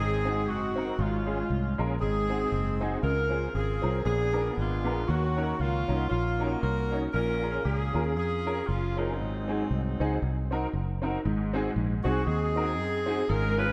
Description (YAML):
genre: uptempo gospel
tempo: 117 BPM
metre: 4/4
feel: swing 57% on 8ths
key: unclear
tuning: A4 = 439 Hz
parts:
  - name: mellow saxophone section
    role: melody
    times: 0.0-13.7 s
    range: Gb3 to Cb5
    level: -33 LUFS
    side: equal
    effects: delay
  - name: warm baby grand piano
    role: accompaniment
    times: 0.0-13.7 s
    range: Ab2 to Db5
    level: -34 LUFS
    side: equal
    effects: ensemble chorus
  - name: fingered electric bass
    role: bass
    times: 0.0-13.7 s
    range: Gb1 to Gb2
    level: -32 LUFS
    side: equal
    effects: none
room: moderate lush hall reverb, RT60 1.9 s, small room ambience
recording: dreamy mix soaked in reverb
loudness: -29 LUFS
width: mono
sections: 0.0-11.2 A section; 11.2-13.7 B section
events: none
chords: 0.0 Ab7; 1.0 Db/Ab; 2.0 Ab7; 3.0 Dbmaj7; 4.1 Bb7b9; 5.1 Ebm7; 7.1 Bbm7; 9.2 Ab7